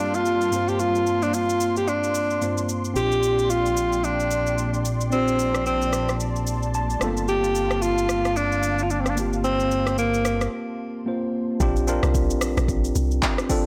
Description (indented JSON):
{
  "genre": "amapiano",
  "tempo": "111 BPM",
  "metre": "4/4",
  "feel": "swing 58% on 16ths",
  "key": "Bb major",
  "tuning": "A4 = 439 Hz",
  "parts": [
    { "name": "breathy alto saxophone", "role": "melody", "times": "0.0-10.5 s", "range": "Bb3 to G4", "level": "-25 LUFS", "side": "equal", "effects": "digital delay" },
    { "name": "tine electric piano", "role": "accompaniment", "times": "0.0-13.7 s", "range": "G2 to A5", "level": "-30 LUFS", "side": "equal", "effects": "none" },
    { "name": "warm analog pad", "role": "sustained chords", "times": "0.0-11.6 s", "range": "G3 to C6", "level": "-35 LUFS", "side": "equal", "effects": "chorus, sidechain pumping" },
    { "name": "afro-pop drum kit", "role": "drums", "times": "0.1-13.6 s", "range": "handclaps, hi-hat, kick drum, rim click, shaker", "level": "-30 LUFS", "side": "equal", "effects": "soft clipping on snare" },
    { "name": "fat analog bass", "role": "bass", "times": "3.0-10.5 s", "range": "G1 to Bb1", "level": "-29 LUFS", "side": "equal", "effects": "none" },
    { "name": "deep log drum bass", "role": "bass", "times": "11.6-13.2 s", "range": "Bb1 to C2", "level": "-25 LUFS", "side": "equal", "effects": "none" }
  ],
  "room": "light reverb, digital ambience",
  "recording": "blown-out, overdriven recording, overdrive",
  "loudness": "-23 LUFS",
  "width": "mono",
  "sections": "0.0-11.6 A section; 11.6-13.7 B section",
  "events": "tine electric piano fill 6.5-7.3; break 10.5-11.6; drop 11.6-13.7",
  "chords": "0.0 Gm11; 3.0 Bb69; 7.0 Gm11; 11.6 Bb69",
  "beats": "0.25 | 0.80 1.33 1.88 2.42 | 2.96 3.50 4.04 4.58 | 5.12 5.66 6.20 6.74 | 7.28 7.82 8.36 8.90 | 9.44 9.98 10.52 11.06 | 11.61 12.15 12.69 13.23"
}